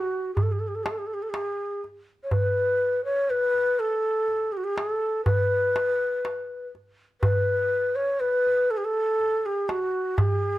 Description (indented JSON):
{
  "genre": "Arabic maqam ensemble",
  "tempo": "122 BPM (eighths)",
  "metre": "10/8",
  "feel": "straight",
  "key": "unclear",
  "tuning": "A4 = 440 Hz",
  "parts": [
    { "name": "breathy mellow ney", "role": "melody", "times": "0.0-10.6 s", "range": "F#4 to C#5", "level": "-24 LUFS", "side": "equal", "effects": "none" },
    { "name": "darbuka", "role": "percussion", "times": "0.4-10.4 s", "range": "none", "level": "-25 LUFS", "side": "right 1 dB", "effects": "none" }
  ],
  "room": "moderate studio reverb, RT60 0.7 s",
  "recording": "none",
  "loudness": "-23 LUFS",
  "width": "side -15 dB against mid",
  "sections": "0.0-10.6 A section",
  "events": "none",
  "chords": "none",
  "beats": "0.35 0.84 1.33 1.82 | 2.32 2.81 3.30 3.79 4.28 4.77 5.26 5.75 6.24 6.74 | 7.23 7.72 8.21 8.70 9.19 9.68 10.17"
}